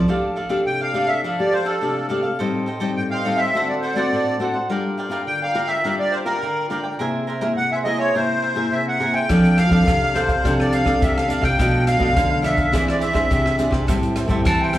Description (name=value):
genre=samba and choro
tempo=104 BPM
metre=4/4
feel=straight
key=F major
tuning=A4 = 441 Hz
part: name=cavaquinho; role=accompaniment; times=0.0-14.8 s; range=D4 to G#5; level=-26 LUFS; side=right 2 dB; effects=slapback echo
part: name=nylon-string guitar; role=accompaniment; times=0.0-14.8 s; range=A2 to Bb4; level=-24 LUFS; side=left 2 dB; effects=slapback echo
part: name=nylon-string guitar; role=bass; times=0.0, 9.3-14.8 s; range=A2 to F3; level=-20 LUFS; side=right 1 dB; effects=none
part: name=accordion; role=melody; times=0.7-14.8 s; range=A4 to A5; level=-21 LUFS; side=equal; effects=light tremolo tuning, slapback echo
part: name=open jazz drum kit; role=drums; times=9.3-14.8 s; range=hi-hat, kick drum, rim click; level=-23 LUFS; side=equal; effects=none
room=light reverb, small room reverb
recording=live gig heard through the venue's PA, club reverb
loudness=-17 LUFS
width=side -14 dB against mid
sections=0.1-14.8 A section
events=none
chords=0.1 F69; 2.4 Am7b5; 3.5 D7; 4.7 Gm7; 7.0 Caug7; 9.3 F6; 11.6 Bm7b5; 12.7 Eaug7; 13.9 Am7